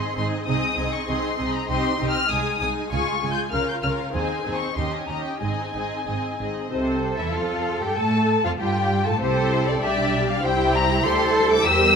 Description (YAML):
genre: quick classical-period movement for string orchestra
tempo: 98 BPM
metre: 2/4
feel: rubato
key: Ab major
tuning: A4 = 440 Hz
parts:
  - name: rich symphonic violin section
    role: melody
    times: 0.0-12.0 s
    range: C5 to G6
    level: -25 LUFS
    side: left 3 dB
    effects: none
  - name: warm symphonic violin section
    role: second line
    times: 0.0-12.0 s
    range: C4 to Ab5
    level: -27 LUFS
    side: left 4 dB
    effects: none
  - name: warm symphonic viola section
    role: accompaniment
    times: 0.0-12.0 s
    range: C3 to G4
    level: -28 LUFS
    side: right 2 dB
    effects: none
  - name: warm symphonic cello section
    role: bass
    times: 0.2-12.0 s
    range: Ab2 to A4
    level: -28 LUFS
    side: right 3 dB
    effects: none
  - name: warm symphonic double bass section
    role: bass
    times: 0.2-12.0 s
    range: Ab1 to A2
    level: -28 LUFS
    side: right 3 dB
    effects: none
room: moderate concert hall reverb, RT60 1.8 s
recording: none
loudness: -20 LUFS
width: side -6 dB against mid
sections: 0.0-6.7 A section; 6.7-12.0 B section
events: none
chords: 0.5 Ab/C; 2.3 Ab; 2.9 Db; 3.5 Bbm/Db; 4.1 Ab; 4.8 Eb7; 5.4 Ab; 6.7 C6; 7.3 Fadd9; 9.2 C; 9.8 G/B; 10.4 C